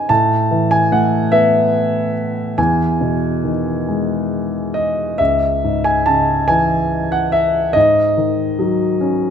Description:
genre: classical, lyrical solo piano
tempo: 47 BPM (dotted quarters)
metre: 6/8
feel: uneven beats, rubato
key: C# minor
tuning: A4 = 440 Hz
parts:
  - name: dark baby grand piano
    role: solo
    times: 0.0-9.3 s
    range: C#2 to A5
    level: -14 LUFS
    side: equal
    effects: none
room: moderate recital hall reverb, RT60 1.6 s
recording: minimal, uncompressed stereo recording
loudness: -14 LUFS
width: side -8 dB against mid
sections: 0.0-9.3 A section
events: none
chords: 0.1 Asus2; 2.6 Emaj7; 5.2 C#m; 7.8 G#7sus4

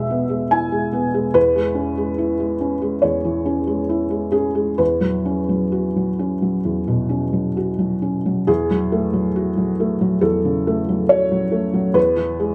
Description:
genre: neoclassical minimalist piano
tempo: 64-72 BPM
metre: 4/4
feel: rubato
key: unclear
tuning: A4 = 442 Hz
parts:
  - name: felt-muted upright piano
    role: solo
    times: 0.0-12.5 s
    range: E2 to G#5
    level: -20 LUFS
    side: equal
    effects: none
room: light reverb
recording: none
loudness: -20 LUFS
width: mono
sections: 0.0-8.5 A section; 8.5-12.5 A section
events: none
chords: 0.0 E; 1.4 C#m/E; 4.8 Bsus2/E; 8.5 F#m/E; 12.0 E

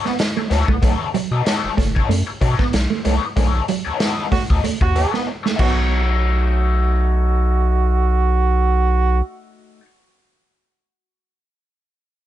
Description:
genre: funk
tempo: 94 BPM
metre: 4/4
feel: swing 56% on 16ths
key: B mixolydian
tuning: A4 = 441 Hz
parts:
  - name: raw garage guitar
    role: accompaniment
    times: 0.0-9.9 s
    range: A3 to D#5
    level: -25 LUFS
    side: left 7 dB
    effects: wah, overdrive, plate reverb
  - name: mellow electric guitar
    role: riff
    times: 0.1-6.0 s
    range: F#3 to B3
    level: -24 LUFS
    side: right 12 dB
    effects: harmonic tremolo
  - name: raw garage drum kit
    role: drums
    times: 0.1-5.8 s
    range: crash cymbal, hi-hat, kick drum, snare drum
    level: -21 LUFS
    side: equal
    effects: none
  - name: round analog bass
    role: bass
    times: 0.5-9.2 s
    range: F#1 to B2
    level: -18 LUFS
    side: equal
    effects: none
  - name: bright trombone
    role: second line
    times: 4.3-9.2 s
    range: F#4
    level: -23 LUFS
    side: right 8 dB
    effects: plate reverb
room: light reverb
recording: nothing above 10.5 kHz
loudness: -16 LUFS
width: side -12 dB against mid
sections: 0.0-5.9 A section; 5.9-8.5 B section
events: band accent 3.4-5.9; drum fill 5.3-5.9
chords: 0.0 B9

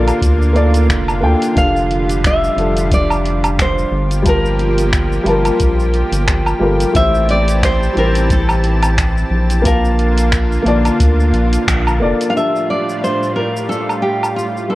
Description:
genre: sunset chillout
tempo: 89 BPM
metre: 4/4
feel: swing 56% on 16ths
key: F major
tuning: A4 = 440 Hz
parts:
  - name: dark baby grand piano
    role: accompaniment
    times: 0.0-14.8 s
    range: F3 to A5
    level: -18 LUFS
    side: equal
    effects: auto-pan, tape echo
  - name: lush unison pad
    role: sustained chords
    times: 0.0-14.8 s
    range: A2 to A5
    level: -21 LUFS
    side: equal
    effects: chorus
  - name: round analog bass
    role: bass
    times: 0.0-12.1 s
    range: F1 to D2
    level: -16 LUFS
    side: equal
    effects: transformer saturation
  - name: smooth R&B drum kit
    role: drums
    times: 0.1-14.7 s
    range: finger snaps, hi-hat, shaker, woodblock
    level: -21 LUFS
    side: equal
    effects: overdrive
  - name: electronic kick drum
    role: drums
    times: 0.2-11.8 s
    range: none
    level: -18 LUFS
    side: equal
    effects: overdrive
  - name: nylon-string guitar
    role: melody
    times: 1.6-14.8 s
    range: F4 to F5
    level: -19 LUFS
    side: equal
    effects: digital delay
room: moderate plate reverb, RT60 2.0 s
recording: worn, warbling old tape, cassette tape, warbly pitch drift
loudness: -12 LUFS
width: side -17 dB against mid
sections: 0.0-12.3 A section; 12.3-14.8 B section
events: band accent 11.7-12.0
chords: 0.0 Bbmaj7; 1.6 F69; 3.9 Gm9; 7.0 Am7; 9.7 Bbmaj7; 12.3 F69

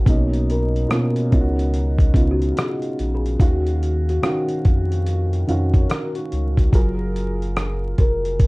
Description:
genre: lo-fi hip hop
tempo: 72 BPM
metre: 4/4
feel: swing 62% on 16ths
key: Eb minor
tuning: A4 = 441 Hz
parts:
  - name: kalimba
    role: melody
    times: 0.0-8.5 s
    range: Gb4 to C#5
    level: -28 LUFS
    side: left 2 dB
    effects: low-pass filter
  - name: dark upright piano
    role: accompaniment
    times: 0.0-8.5 s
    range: B2 to F5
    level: -24 LUFS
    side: right 1 dB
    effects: cassette tape, low-pass filter
  - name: saturated sub bass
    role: bass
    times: 0.0-8.5 s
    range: F1 to F2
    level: -22 LUFS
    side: equal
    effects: none
  - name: dusty soul sampler-style drum kit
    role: drums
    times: 0.1-8.5 s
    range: hi-hat, kick drum, rim click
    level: -17 LUFS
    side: equal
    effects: none
  - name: mellow tine electric piano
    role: second line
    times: 5.7-6.7 s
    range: Eb4 to Db5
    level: -32 LUFS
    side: left 1 dB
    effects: medium stereo tremolo, low-pass filter, tape echo
room: light reverb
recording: dark, warm production, vinyl crackle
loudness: -17 LUFS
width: side -25 dB against mid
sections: 0.0-6.7 A section; 6.7-8.5 B section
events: none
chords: 0.1 Bmaj9; 1.3 Db9sus4; 3.4 Ebm9; 6.7 Gbmaj9

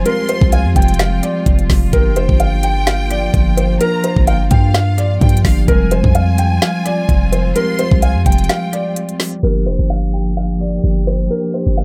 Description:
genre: hip hop, trap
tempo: 128 BPM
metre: 4/4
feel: half-time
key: G phrygian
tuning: A4 = 441 Hz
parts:
  - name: felt-muted upright piano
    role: melody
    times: 0.0-11.8 s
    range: Bb4 to G5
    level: -22 LUFS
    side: equal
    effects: analog delay
  - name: mellow tine electric piano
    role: accompaniment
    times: 0.0-11.8 s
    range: F3 to G4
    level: -24 LUFS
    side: equal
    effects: analog delay
  - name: dark studio string section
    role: sustained chords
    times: 0.0-11.8 s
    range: F3 to G4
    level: -28 LUFS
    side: equal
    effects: none
  - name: warm 808-style bass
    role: bass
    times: 0.0-11.8 s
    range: F1 to G2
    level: -18 LUFS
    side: equal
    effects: none
  - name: clear studio violin section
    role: second line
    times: 0.1-8.9 s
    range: F5 to C6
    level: -29 LUFS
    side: equal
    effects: analog delay
  - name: trap drum kit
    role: drums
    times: 0.1-11.8 s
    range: hi-hat, kick drum, snare drum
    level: -17 LUFS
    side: equal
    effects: none
room: little or no reverb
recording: echo-heavy mix, low-pass filter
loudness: -15 LUFS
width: mono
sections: 0.0-9.4 A section; 9.4-11.8 B section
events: break 8.5-9.4; filter sweep 9.4-11.8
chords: 0.0 Fmadd9; 1.9 Gm7; 5.7 Fmadd9; 9.4 Gm7

